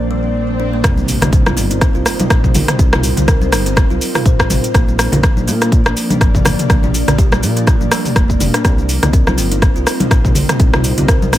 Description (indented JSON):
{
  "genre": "afro house",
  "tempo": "123 BPM",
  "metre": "4/4",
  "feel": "swing 56% on 16ths",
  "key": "C minor",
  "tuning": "A4 = 435 Hz",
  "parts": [
    { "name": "ethereal airy pad", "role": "sustained chords", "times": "0.0-11.4 s", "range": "F3 to D5", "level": "-23 LUFS", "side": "left 1 dB", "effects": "ensemble chorus, built-in reverb, sidechain pumping" },
    { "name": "smooth synth bass", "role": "bass", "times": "0.0-11.4 s", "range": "F1 to Bb2", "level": "-18 LUFS", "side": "equal", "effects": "sidechain pumping" },
    { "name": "swell and impact", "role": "sound effects", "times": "0.0-2.8 s", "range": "none", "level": "-25 LUFS", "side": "equal", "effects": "none" },
    { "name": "kalimba", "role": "arpeggios", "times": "0.1-11.4 s", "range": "G3 to C5", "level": "-22 LUFS", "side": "right 2 dB", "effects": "sidechain pumping, digital delay" },
    { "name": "electronic kick drum", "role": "drums", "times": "0.8-11.2 s", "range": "none", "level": "-13 LUFS", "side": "equal", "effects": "none" },
    { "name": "house drum kit", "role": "drums", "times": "0.8-11.4 s", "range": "cabasa, hi-hat, rim click, toms", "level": "-17 LUFS", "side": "equal", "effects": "none" },
    { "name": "congas", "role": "percussion", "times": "1.0-11.3 s", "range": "none", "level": "-21 LUFS", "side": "equal", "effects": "none" }
  ],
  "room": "little or no reverb",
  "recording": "none",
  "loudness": "-11 LUFS",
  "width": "side -13 dB against mid",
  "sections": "0.8-11.4 A section",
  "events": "swell 0.0-0.8; drop 0.8-11.4; impact 0.8-2.8",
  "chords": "0.0 Bb; 0.8 Cm7; 4.7 Bb; 8.6 Cm7",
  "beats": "0.35 | 0.84 1.33 1.82 2.30 | 2.79 3.28 3.77 4.26 | 4.74 5.23 5.72 6.21 | 6.70 7.18 7.67 8.16 | 8.65 9.13 9.62 10.11 | 10.60 11.09"
}